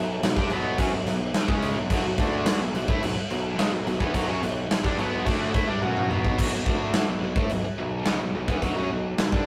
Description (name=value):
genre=quiet-loud alternative rock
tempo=107 BPM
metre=4/4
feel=straight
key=B minor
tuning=A4 = 440 Hz
part: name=biting overdriven guitar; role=riff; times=0.0-9.5 s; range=B2 to F#4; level=-35 LUFS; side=equal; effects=none
part: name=distorted electric guitar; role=riff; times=0.0-6.4 s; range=B2 to F#4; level=-33 LUFS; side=equal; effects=overdrive
part: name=heavy high-gain guitar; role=riff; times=0.0-9.5 s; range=B2 to F#4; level=-36 LUFS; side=equal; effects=distortion
part: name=fuzz picked electric bass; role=bass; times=0.0-9.5 s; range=B1 to A2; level=-33 LUFS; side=equal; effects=overdrive
part: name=big rock drum kit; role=drums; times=0.2-9.5 s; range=crash cymbal, kick drum, snare drum, toms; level=-28 LUFS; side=equal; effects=none
room=moderate small room reverb, RT60 0.6 s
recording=rough rehearsal-room recording, tube saturation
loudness=-25 LUFS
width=mono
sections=0.0-6.4 A section; 6.4-9.5 B section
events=drum fill 5.8-6.4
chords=0.0 Bm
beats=0.23 0.79 1.35 | 1.91 2.47 3.03 3.59 | 4.15 4.71 5.27 5.83 | 6.39 6.95 7.51 8.07 | 8.63 9.19